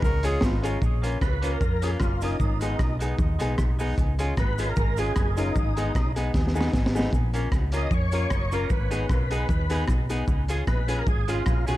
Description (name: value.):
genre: ska.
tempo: 152 BPM.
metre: 4/4.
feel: swing 54% on 8ths.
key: G# dorian.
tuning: A4 = 440 Hz.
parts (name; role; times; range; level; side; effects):
warm tenor saxophone; melody; 0.0-0.6 s; E#4 to A#4; -34 LUFS; equal; tape echo, plate reverb.
hollow-body short-scale fingered electric bass; bass; 0.0-11.8 s; F#1 to E#2; -27 LUFS; equal; none.
crunchy breakbeat drum kit; drums; 0.0-11.8 s; hi-hat, kick drum, rim click, snare drum; -26 LUFS; equal; none.
cabasa; percussion; 0.0-11.8 s; none; -49 LUFS; right 8 dB; none.
semi-hollow electric guitar; accompaniment; 0.2-11.8 s; G#3 to G#4; -35 LUFS; right 2 dB; tape echo, plate reverb.
dark upright piano; stabs; 0.2-11.8 s; B3 to A#4; -32 LUFS; left 3 dB; tape echo, plate reverb.
overdriven tonewheel organ; melody; 1.2-11.8 s; D#4 to D#5; -32 LUFS; right 1 dB; chorus vibrato, slow rotary speaker, tape echo, plate reverb.
room: light reverb.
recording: dark, warm production.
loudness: -22 LUFS.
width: side -15 dB against mid.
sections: 0.8-11.8 A section.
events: drum fill 6.3-7.1.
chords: 0.0 C#; 0.8 A#m; 2.4 G#m; 4.0 C#; 5.6 G#m; 7.1 A#m; 8.7 G#m; 10.3 C#.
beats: 0.03 0.42 | 0.82 1.21 1.61 2.00 | 2.40 2.79 3.19 3.58 | 3.98 4.37 4.77 5.16 | 5.55 5.95 6.34 6.74 | 7.13 7.52 7.92 8.31 | 8.70 9.10 9.49 9.88 | 10.28 10.67 11.06 11.46.